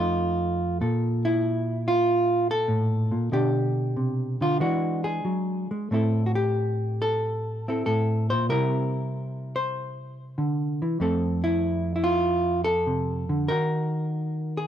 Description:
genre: solo jazz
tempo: 95 BPM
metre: 4/4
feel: swing 69% on 8ths, rubato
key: F major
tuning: A4 = 440 Hz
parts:
  - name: hollow-body jazz guitar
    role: solo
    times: 0.0-14.7 s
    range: F2 to C5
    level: -23 LUFS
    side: equal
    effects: none
room: little or no reverb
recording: dry, close 1970s-style studio recording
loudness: -23 LUFS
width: side -10 dB against mid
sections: 0.0-14.7 A section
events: none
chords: 0.0 F7; 0.8 Bb5; 3.3 Gadd11/B; 4.6 E7; 5.9 Am7; 8.5 C7; 11.0 Fmaj7; 13.5 Ebm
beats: 0.19 | 0.81 1.44 2.06 2.69 | 3.33 3.96 4.60 5.25 | 5.92 6.57 7.22 7.87 | 8.50 9.14 9.76 10.39 | 11.01 11.63 12.25 12.87 | 13.50 14.14

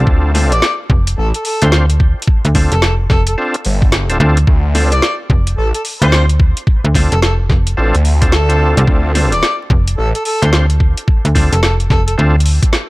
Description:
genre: glitch hop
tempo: 109 BPM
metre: 4/4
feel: swing 62% on 16ths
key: D minor pentatonic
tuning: A4 = 440 Hz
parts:
  - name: overdriven tonewheel organ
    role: stabs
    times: 0.0-12.4 s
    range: C4 to C5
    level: -20 LUFS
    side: equal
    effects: chorus vibrato, sidechain pumping, dub echo
  - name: slap-like FM bass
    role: bass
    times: 0.0-12.6 s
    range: F1 to D2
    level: -12 LUFS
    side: equal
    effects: none
  - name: phased detuned saw bass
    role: bass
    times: 0.1-10.1 s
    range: G1 to D2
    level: -13 LUFS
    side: equal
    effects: phaser, overdrive
  - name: electronic kick drum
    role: drums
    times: 0.1-12.7 s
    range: none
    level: -12 LUFS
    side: equal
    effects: none
  - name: drum and bass drum kit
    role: drums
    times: 0.3-12.9 s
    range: hi-hat, snare drum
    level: -18 LUFS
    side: equal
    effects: none
  - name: mellow harmonica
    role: melody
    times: 0.5-12.1 s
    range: A4 to D5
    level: -21 LUFS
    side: equal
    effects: vintage 12-bit sampler grit, dub echo
room: digital ambience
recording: vinyl crackle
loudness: -10 LUFS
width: side -21 dB against mid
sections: 0.0-12.9 A section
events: none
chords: 0.0 Dm7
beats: | 0.07 0.62 1.17 1.72 | 2.27 2.82 3.37 3.92 | 4.47 5.02 5.57 6.12 | 6.67 7.22 7.78 8.33 | 8.88 9.43 9.98 10.53 | 11.08 11.63 12.18 12.73

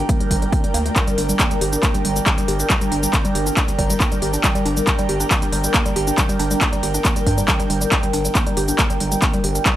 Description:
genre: driving peak-time techno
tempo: 138 BPM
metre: 4/4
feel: straight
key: G minor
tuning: A4 = 440 Hz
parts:
  - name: woody wave-folded pluck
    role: riff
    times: 0.0-9.7 s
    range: G3 to G4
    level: -24 LUFS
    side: equal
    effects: chorus, overdrive, sidechain pumping, tape echo
  - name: gritty driven synth bass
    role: bass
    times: 0.0-9.6 s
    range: G1 to G2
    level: -23 LUFS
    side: equal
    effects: sidechain pumping
  - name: airy breathy pad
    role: texture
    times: 0.0-9.8 s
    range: D4 to G5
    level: -24 LUFS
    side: right 2 dB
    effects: chorus, phaser, sidechain pumping
  - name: electronic kick drum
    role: drums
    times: 0.1-9.7 s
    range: none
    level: -20 LUFS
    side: equal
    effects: overdrive, studio reverb
  - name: techno drum kit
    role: drums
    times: 0.1-9.7 s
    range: handclaps, hi-hat, shaker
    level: -21 LUFS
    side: equal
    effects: overdrive, studio reverb
room: light reverb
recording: dry, gritty hardware recording, transformer saturation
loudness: -16 LUFS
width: side -13 dB against mid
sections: 0.0-9.8 A section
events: none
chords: 0.0 Gm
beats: 0.09 0.53 | 0.96 1.40 1.83 2.27 | 2.70 3.13 3.57 4.00 | 4.44 4.87 5.31 5.74 | 6.18 6.61 7.05 7.48 | 7.92 8.35 8.79 9.22 | 9.66

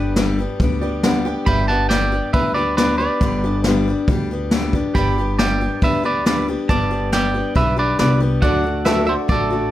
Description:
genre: honky-tonk and classic country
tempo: 138 BPM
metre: 4/4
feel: straight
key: G major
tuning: A4 = 440 Hz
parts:
  - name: twangy electric guitar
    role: melody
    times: 0.0-9.7 s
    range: G4 to B5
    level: -20 LUFS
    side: right 2 dB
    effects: none
  - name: bright grand piano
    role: accompaniment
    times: 0.0-9.7 s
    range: F#4 to G5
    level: -30 LUFS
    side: right 6 dB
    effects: none
  - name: picked acoustic archtop guitar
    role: accompaniment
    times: 0.0-9.7 s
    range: G2 to G4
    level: -21 LUFS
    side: left 3 dB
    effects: none
  - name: pedal steel guitar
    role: sustained chords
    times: 0.0-9.7 s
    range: A4 to F#5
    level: -27 LUFS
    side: right 1 dB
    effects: none
  - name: upright bass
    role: bass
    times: 0.0-9.7 s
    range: G1 to D2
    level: -23 LUFS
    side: equal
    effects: none
  - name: vintage brush drum kit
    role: drums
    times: 0.2-9.4 s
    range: hi-hat, kick drum, snare drum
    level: -21 LUFS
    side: equal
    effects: none
room: light reverb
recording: none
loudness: -16 LUFS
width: side -13 dB against mid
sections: 0.0-9.7 A section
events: grand piano fill 0.6-1.5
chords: 0.0 G; 8.4 D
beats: 0.17 0.60 1.04 | 1.47 1.91 2.34 2.78 | 3.21 3.65 4.08 4.52 | 4.95 5.39 5.82 6.26 | 6.69 7.13 7.56 8.00 | 8.43 8.86 9.30

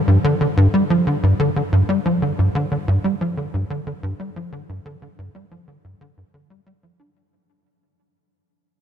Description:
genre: ambient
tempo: 91 BPM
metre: 4/4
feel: straight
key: unclear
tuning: A4 = 440 Hz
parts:
  - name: tight sequencer bass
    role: solo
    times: 0.1-7.1 s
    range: G2 to D4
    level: -17 LUFS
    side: equal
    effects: ensemble chorus, ping-pong delay
room: moderate huge ambient reverb, RT60 7.5 s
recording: none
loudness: -17 LUFS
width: side -8 dB against mid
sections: 0.0-7.2 A section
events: fade-out 0.0-7.2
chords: none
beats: 0.57 1.23 | 1.89 2.55 3.21 3.87 | 4.53 5.19 5.85 6.51

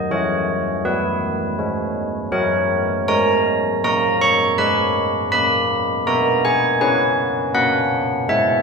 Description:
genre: classical, tune for church bells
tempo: 81 BPM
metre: 3/4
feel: straight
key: unclear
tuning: A4 = 440 Hz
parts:
  - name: carillon bells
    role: solo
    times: 0.0-8.6 s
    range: E3 to C#6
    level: -16 LUFS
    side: equal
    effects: none
room: wet scoring stage reverb, RT60 1.6 s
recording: recorded in a church or concert hall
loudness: -16 LUFS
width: side -4 dB against mid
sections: 0.0-8.6 A section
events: none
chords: 0.1 C#m7/E; 2.3 F#; 4.6 G#m; 6.8 C#m7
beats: | 0.12 0.85 1.59 | 2.32 3.08 3.82 | 4.56 5.30 6.05 | 6.80 7.54 8.30

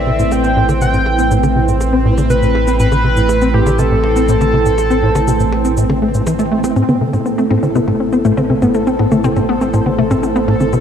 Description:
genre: ambient, sequencer-driven space music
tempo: 121 BPM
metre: 4/4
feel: straight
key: A minor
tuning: A4 = 440 Hz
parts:
  - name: pulse-width lead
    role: melody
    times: 0.0-6.3 s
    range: G4 to G5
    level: -17 LUFS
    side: equal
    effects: chorus, analog delay
  - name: sweeping resonant pad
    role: sustained chords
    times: 0.0-10.8 s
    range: A3 to C5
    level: -19 LUFS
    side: right 2 dB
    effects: chorus
  - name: warm sub bass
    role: bass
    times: 0.0-10.8 s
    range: A1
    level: -19 LUFS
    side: equal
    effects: none
  - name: bubbling stepped-filter texture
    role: texture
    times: 0.0-10.8 s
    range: C4 to A4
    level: -24 LUFS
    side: right 1 dB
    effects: chorus, built-in reverb
  - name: tight sequencer bass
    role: riff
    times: 0.1-10.8 s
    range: A2 to C4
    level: -16 LUFS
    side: equal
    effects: ensemble chorus, analog delay
  - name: shaker and percussion blips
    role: percussion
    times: 0.2-10.8 s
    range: none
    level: -31 LUFS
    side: left 2 dB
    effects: analog delay
  - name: wide unison pluck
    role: arpeggios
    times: 6.8-10.8 s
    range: A3 to C4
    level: -16 LUFS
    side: left 3 dB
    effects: auto-pan, cassette tape, analog delay
room: moderate plate reverb, RT60 2.7 s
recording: dark, warm production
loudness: -11 LUFS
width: side -8 dB against mid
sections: 0.0-6.8 A section; 6.8-10.8 B section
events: fade-in on sub bass 6.8-10.8; fade-in on drum 6.8-10.8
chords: 0.0 Amadd9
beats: 0.32 | 0.81 1.31 1.80 2.30 | 2.80 3.29 3.79 4.28 | 4.78 5.28 5.77 6.27 | 6.76 7.26 7.75 8.25 | 8.75 9.24 9.74 10.23 | 10.73

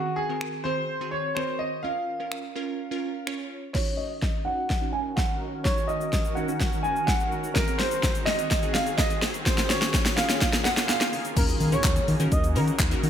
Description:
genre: dance-pop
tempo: 126 BPM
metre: 4/4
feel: straight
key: Eb dorian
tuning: A4 = 440 Hz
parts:
  - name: clear concert grand piano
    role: melody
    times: 0.0-11.1 s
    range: Gb4 to Ab5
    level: -29 LUFS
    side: equal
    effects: lush chorus, low-pass filter, digital delay
  - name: glassy wavetable pluck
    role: accompaniment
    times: 0.0-13.1 s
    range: Eb3 to Db5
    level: -34 LUFS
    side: right 1 dB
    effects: chorus, sidechain pumping, low-pass filter
  - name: deep house drum kit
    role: drums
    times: 0.4-13.1 s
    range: crash cymbal, finger snaps, handclaps, hi-hat, kick drum, shaker, snare drum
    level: -25 LUFS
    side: equal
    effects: gated reverb
  - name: shimmering ambient pad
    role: sustained chords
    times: 4.4-13.1 s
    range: Db3 to Bb4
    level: -34 LUFS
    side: equal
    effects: chorus, built-in reverb, sidechain pumping, low-pass filter
  - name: tube shaker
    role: percussion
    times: 7.6-13.1 s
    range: none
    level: -43 LUFS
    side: left 8 dB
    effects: none
  - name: expressive portamento lead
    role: melody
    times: 11.4-12.6 s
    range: Bb4 to Eb5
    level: -30 LUFS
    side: right 1 dB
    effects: chorus, digital delay
  - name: round analog bass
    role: bass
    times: 11.4-13.1 s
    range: Eb2 to Eb3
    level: -24 LUFS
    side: equal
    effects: sidechain pumping
  - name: impact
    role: sound effects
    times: 11.4-13.1 s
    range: none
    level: -35 LUFS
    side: equal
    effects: none
room: moderate lush hall reverb, RT60 1.6 s, digital ambience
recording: bright 1980s-style digital production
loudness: -23 LUFS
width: side -9 dB against mid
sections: 0.0-3.7 A section; 3.7-11.4 B section; 11.4-13.1 C section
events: build-up 3.7-11.4; drum fill 3.7-11.4; filter sweep 3.7-11.4; drop 11.4-13.1; impact 11.4-13.1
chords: 0.0 Ab7/Eb; 1.8 Db6; 3.7 Ebm7; 7.6 Ab7/Eb; 9.5 Db6; 11.4 Ebm7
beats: 0.41 0.89 1.37 | 1.84 2.32 2.79 3.27 | 3.75 4.22 4.70 5.18 | 5.65 6.13 6.61 7.08 | 7.56 8.03 8.51 8.99 | 9.46 9.94 10.41 10.89 | 11.37 11.84 12.32 12.79

